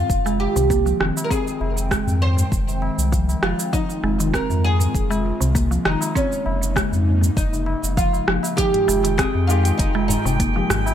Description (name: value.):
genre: organic downtempo.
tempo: 99 BPM.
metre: 4/4.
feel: straight.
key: F minor.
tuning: A4 = 441 Hz.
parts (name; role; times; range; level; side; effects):
oud; melody; 0.0-10.7 s; Db4 to C5; -25 LUFS; right 1 dB; digital delay.
airy breathy pad; sustained chords; 0.0-10.9 s; Db3 to G5; -29 LUFS; right 1 dB; chorus, sidechain pumping.
mallet-like synth pluck; arpeggios; 0.0-10.9 s; C3 to C4; -26 LUFS; equal; chorus, digital delay.
warm sub bass; bass; 0.0-10.9 s; F1 to F2; -21 LUFS; equal; none.
electronic kick drum; drums; 0.1-10.5 s; none; -23 LUFS; equal; none.
organic electronic drum kit; drums; 0.1-10.9 s; cabasa, hi-hat, rim click; -25 LUFS; right 2 dB; none.
tabla; percussion; 0.3-10.9 s; none; -31 LUFS; left 2 dB; none.
felt-muted upright piano; accompaniment; 8.6-10.9 s; Eb3 to G4; -28 LUFS; left 6 dB; sidechain pumping, digital delay.
drifting glass-harmonics texture; texture; 8.8-10.9 s; G5; -31 LUFS; right 6 dB; chorus, built-in reverb.
room: light reverb.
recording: none.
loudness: -18 LUFS.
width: side -10 dB against mid.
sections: 0.0-8.6 A section; 8.6-10.9 B section.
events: none.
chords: 0.0 Fm7; 1.3 Abmaj7/F; 3.7 Fm7; 6.2 Eb7sus4/F; 8.6 Fm9.